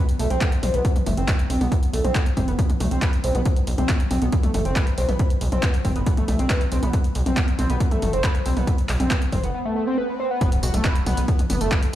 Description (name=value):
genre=driving peak-time techno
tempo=138 BPM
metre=4/4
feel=straight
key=unclear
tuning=A4 = 439 Hz
part: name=punchy analog drum machine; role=drums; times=0.1-11.9 s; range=handclaps, hi-hat, tambourine, toms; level=-28 LUFS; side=left 1 dB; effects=overdrive, sidechain pumping on hats, sidechain pumping on toms, sidechain pumping on perc
part: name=overdriven synth lead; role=riff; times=0.2-11.8 s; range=A3 to B4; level=-26 LUFS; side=equal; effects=distortion, analog chorus, sidechain pumping, ping-pong delay
part: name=gritty driven synth bass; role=bass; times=0.2-11.7 s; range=F#1 to B1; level=-23 LUFS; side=equal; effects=sidechain pumping
part: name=electronic kick drum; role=drums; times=0.4-11.8 s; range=none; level=-21 LUFS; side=equal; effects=none
part: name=swell and impact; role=sound effects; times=9.7-11.9 s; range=none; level=-31 LUFS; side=right 3 dB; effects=none
room=little or no reverb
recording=played on a big sound system in a bare room, large studio reverb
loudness=-19 LUFS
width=side -13 dB against mid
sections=0.0-10.4 A section; 10.4-11.9 B section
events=break 9.5-10.4; swell 9.7-10.4; drop 10.4-11.9; impact 10.4-11.9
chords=0.0 B5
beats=0.41 0.85 1.28 | 1.72 2.15 2.59 3.02 | 3.46 3.89 4.33 4.76 | 5.20 5.63 6.07 6.50 | 6.93 7.37 7.80 8.24 | 8.67 9.11 9.54 9.98 | 10.41 10.85 11.28 11.72